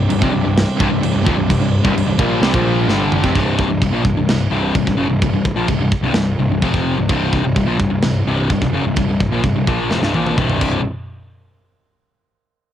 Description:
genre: heavy metal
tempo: 128 BPM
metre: 4/4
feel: straight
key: unclear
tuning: A4 = 440 Hz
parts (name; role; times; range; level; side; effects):
- chamber organ, principal chorus; sustained chords; 0.0-3.3 s; C3 to D4; -25 LUFS; right 2 dB; none
- distorted electric guitar; riff; 0.0-10.8 s; C2 to Bb3; -23 LUFS; right 11 dB; distortion, cassette tape
- fuzz guitar; riff; 0.0-3.3 s; C2 to Bb3; -21 LUFS; right 1 dB; distortion, cassette tape
- sludgy distorted guitar; riff; 0.0-10.8 s; C2 to Bb3; -18 LUFS; left 4 dB; overdrive, cassette tape
- fuzz picked electric bass; bass; 0.0-10.8 s; C1 to C2; -22 LUFS; right 1 dB; overdrive
- tight metal drum kit; drums; 0.1-10.7 s; china cymbal, crash cymbal, kick drum, snare drum, toms; -20 LUFS; right 1 dB; none
room: small room ambience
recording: home recording on cassette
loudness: -14 LUFS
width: side -10 dB against mid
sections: 0.0-3.3 A section; 3.3-10.8 B section; 10.8-12.7 C section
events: drum fill 2.9-3.3, 9.9-10.8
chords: 0.0 Cm; 3.3 C5; 10.8 N.C.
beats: 0.09 0.55 1.02 | 1.48 1.95 2.41 2.88 | 3.34 3.81 4.27 4.74 | 5.21 5.67 6.14 6.61 | 7.08 7.55 8.02 8.49 | 8.96 9.43 9.90 10.37

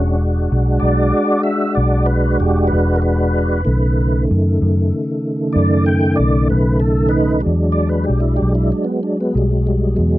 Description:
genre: slow blues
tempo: 63 BPM (dotted quarters)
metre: 12/8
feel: straight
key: E mixolydian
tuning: A4 = 441 Hz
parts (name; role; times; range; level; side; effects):
- tonewheel organ; sustained chords; 0.0-10.2 s; B2 to G5; -17 LUFS; equal; overdrive, chorus vibrato, slow rotary speaker
- vintage muted fingered electric bass; bass; 0.0-10.2 s; E1 to F#2; -16 LUFS; equal; none
room: little or no reverb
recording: dry, close 1970s-style studio recording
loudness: -14 LUFS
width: side -16 dB against mid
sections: 0.0-7.5 A section; 7.5-10.2 A section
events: tonewheel organ solo 0.0-10.2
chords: 0.0 E7; 3.7 B7; 7.5 E7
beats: 0.82 1.76 2.71 | 3.66 4.61 5.56 6.50 | 7.45 8.40 9.35

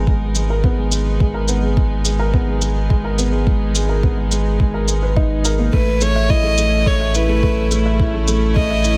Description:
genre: piano and strings electronica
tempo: 106 BPM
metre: 4/4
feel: straight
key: unclear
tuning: A4 = 440 Hz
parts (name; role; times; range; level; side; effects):
- rich chamber string section; sustained chords; 0.0-9.0 s; G#3 to A#4; -31 LUFS; equal; sidechain pumping
- dark upright piano; riff; 0.0-9.0 s; G#3 to E5; -24 LUFS; equal; low-pass filter, digital delay
- round analog bass; bass; 0.0-9.0 s; G#1 to A1; -21 LUFS; equal; sidechain pumping
- electronic kick drum; drums; 0.1-8.7 s; none; -19 LUFS; equal; none
- shaker; drums; 0.4-9.0 s; none; -26 LUFS; equal; none
- dark violin; melody; 5.7-9.0 s; B4 to D#5; -22 LUFS; equal; none
room: studio reverb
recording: none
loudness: -17 LUFS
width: mono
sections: 0.0-9.0 A section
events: fade-in on string section 0.0-9.0; filter sweep on upright piano 0.0-9.0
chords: 0.0 G#madd9; 5.7 A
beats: 0.07 0.64 | 1.20 1.77 2.33 2.90 | 3.47 4.03 4.60 5.17 | 5.73 6.30 6.86 7.43 | 8.00 8.56

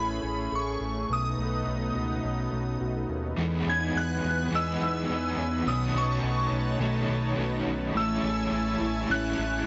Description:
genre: dream pop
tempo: 105 BPM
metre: 4/4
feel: straight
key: E major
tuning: A4 = 442 Hz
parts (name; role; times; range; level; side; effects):
- shimmering bell with halo; melody; 0.0-9.7 s; B5 to G#6; -34 LUFS; equal; ensemble chorus, tape echo
- lush unison pad; sustained chords; 0.0-9.7 s; A3 to A5; -37 LUFS; equal; chorus
- mellow electric guitar; arpeggios; 0.0-9.7 s; B2 to G#4; -33 LUFS; equal; subtle chorus, tape echo
- fat analog bass; bass; 0.0-9.6 s; A1 to E2; -36 LUFS; equal; none
- backwards swelling texture; texture; 3.6-9.7 s; E5 to G#5; -49 LUFS; equal; none
- overdriven semi-hollow guitar; accompaniment; 3.4-9.7 s; A2 to F#4; -35 LUFS; equal; tremolo, lush chorus
room: digital ambience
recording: dry, gritty hardware recording, cassette tape, nothing above 7.8 kHz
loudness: -28 LUFS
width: mono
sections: 0.0-3.4 A section; 3.4-9.7 B section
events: none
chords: 0.0 Amaj7; 1.1 B9; 3.4 Emaj7; 5.7 B9; 8.0 Amaj7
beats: 0.52 | 1.09 1.66 2.23 2.81 | 3.38 3.95 4.52 5.09 | 5.66 6.24 6.81 7.38 | 7.95 8.52 9.09 9.66

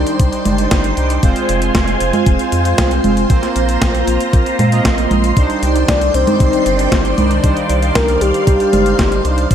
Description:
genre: italo disco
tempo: 116 BPM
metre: 4/4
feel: straight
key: C minor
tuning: A4 = 440 Hz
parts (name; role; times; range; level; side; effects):
- phased string machine; sustained chords; 0.0-9.5 s; Eb3 to C6; -19 LUFS; equal; ensemble chorus, phaser, shimmer reverb
- analog synth brass; stabs; 0.0-9.5 s; G3 to Eb5; -19 LUFS; right 3 dB; chorus, digital delay, shimmer reverb
- round analog bass; bass; 0.0-9.5 s; F1 to Bb2; -18 LUFS; equal; tube saturation
- clean 12-bit digital drum machine; drums; 0.1-9.5 s; congas, hi-hat, snare drum; -19 LUFS; right 1 dB; gated reverb
- electronic kick drum; drums; 0.2-9.5 s; none; -15 LUFS; equal; none
- soft octave-layered synth lead; melody; 5.9-9.2 s; G4 to D5; -17 LUFS; left 1 dB; chorus, tape echo, shimmer reverb
room: light reverb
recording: none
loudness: -12 LUFS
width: side -9 dB against mid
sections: 0.0-9.5 A section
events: none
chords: 0.0 Cmadd9; 1.2 Fm; 3.3 Bbsus2; 5.4 Cmadd9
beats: 0.20 0.71 | 1.23 1.75 2.27 2.78 | 3.30 3.82 4.33 4.85 | 5.37 5.89 6.40 6.92 | 7.44 7.96 8.47 8.99 | 9.51

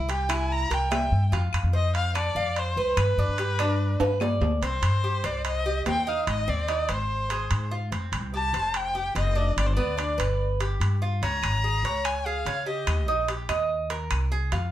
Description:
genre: latin, Cuban son and guajira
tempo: 146 BPM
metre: 4/4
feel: straight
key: C minor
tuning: A4 = 443 Hz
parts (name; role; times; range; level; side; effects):
- Cuban tres; arpeggios; 0.0-14.7 s; B3 to F5; -30 LUFS; right 2 dB; none
- upright bass; bass; 0.0-14.7 s; F1 to Db3; -27 LUFS; equal; none
- clear erhu; melody; 0.1-13.2 s; B4 to Bb5; -29 LUFS; left 2 dB; none
- timbales; percussion; 0.1-14.7 s; none; -31 LUFS; right 2 dB; none
- claves; percussion; 0.3-4.4, 11.4-14.3 s; none; -39 LUFS; left 8 dB; none
room: moderate studio reverb, RT60 0.7 s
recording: heard from further back in the room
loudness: -23 LUFS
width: side -12 dB against mid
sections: 0.0-4.6 A section; 4.6-14.7 B section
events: drum fill 4.0-4.6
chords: 0.0 C7; 1.3 F; 3.0 G; 4.6 Cm; 6.3 Ab; 7.9 Fadd9; 9.6 G; 11.2 Db; 12.9 Eb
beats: 0.09 0.51 0.92 | 1.33 1.74 2.15 2.56 | 2.98 3.39 3.80 4.21 | 4.62 5.04 5.45 5.86 | 6.27 6.69 7.10 7.51 | 7.92 8.34 8.75 9.16 | 9.57 9.98 10.40 10.81 | 11.22 11.63 12.05 12.46 | 12.87 13.28 13.70 14.11 | 14.52

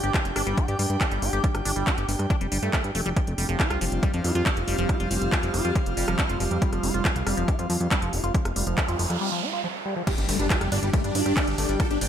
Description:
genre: psychedelic trance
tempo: 139 BPM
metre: 4/4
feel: straight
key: unclear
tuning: A4 = 440 Hz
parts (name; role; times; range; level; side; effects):
- liquid acid bass; riff; 0.0-12.1 s; F3 to G4; -31 LUFS; moving between left 4 dB and right 3 dB; phaser, auto-pan, sidechain pumping, tape echo
- fat analog bass; bass; 0.0-12.1 s; F1 to G2; -27 LUFS; equal; none
- techno drum kit; drums; 0.0-12.1 s; crash cymbal, handclaps, hi-hat, ride cymbal, rim click; -29 LUFS; equal; studio reverb
- airy breathy pad; texture; 0.0-12.1 s; C4 to G5; -32 LUFS; left 1 dB; chorus, sidechain pumping
- electronic kick drum; drums; 0.1-11.9 s; none; -24 LUFS; equal; studio reverb
- evolving wavetable pad; sustained chords; 3.8-12.1 s; G3; -34 LUFS; right 4 dB; chorus, built-in reverb, sidechain pumping
- noise sweep and impact; sound effects; 8.7-11.8 s; none; -32 LUFS; right 2 dB; none
- dense compressed supersaw; melody; 10.1-12.1 s; G3 to A4; -28 LUFS; left 1 dB; phaser, sidechain pumping, tape echo
room: light reverb, digital ambience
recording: none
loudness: -22 LUFS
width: side -9 dB against mid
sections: 0.0-10.1 A section; 10.1-12.1 B section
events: noise sweep 8.7-10.1; break 9.2-10.1; drop 10.1-12.1; impact 10.1-11.8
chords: 0.0 F5; 10.1 G5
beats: 0.14 0.57 1.01 | 1.44 1.87 2.30 2.73 | 3.17 3.60 4.03 4.46 | 4.89 5.32 5.75 6.19 | 6.62 7.05 7.48 7.91 | 8.35 8.78 9.21 9.64 | 10.07 10.50 10.94 11.37 | 11.80

